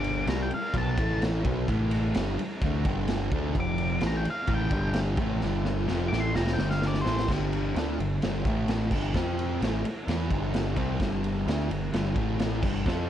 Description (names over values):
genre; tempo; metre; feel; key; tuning
garage rock duo or trio; 129 BPM; 4/4; straight; G mixolydian; A4 = 439 Hz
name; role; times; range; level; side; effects
octave-fuzz lead guitar; melody; 0.0-7.3 s; C5 to D6; -32 LUFS; left 1 dB; distortion
fuzz guitar; riff; 0.0-13.1 s; F2 to F4; -29 LUFS; equal; distortion
growling picked electric bass; bass; 0.0-13.1 s; F1 to F2; -31 LUFS; equal; overdrive
raw garage drum kit; drums; 0.0-13.0 s; crash cymbal, kick drum, ride cymbal, snare drum; -30 LUFS; equal; none
room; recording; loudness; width
light reverb; cassette tape; -25 LUFS; side -10 dB against mid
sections
0.0-7.3 A section; 7.3-13.1 B section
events
lead electric guitar solo 0.0-7.3; drum fill 5.4-7.3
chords
0.0 G; 1.0 A5; 1.4 B5; 1.7 A5; 2.1 G5; 3.5 F5; 4.7 G5; 5.2 A5; 5.4 G5; 5.9 F5; 6.6 G5; 7.0 Am; 7.3 G5; 8.4 A5; 8.9 G5; 9.1 F5; 9.6 G5; 12.2 A5; 12.6 G5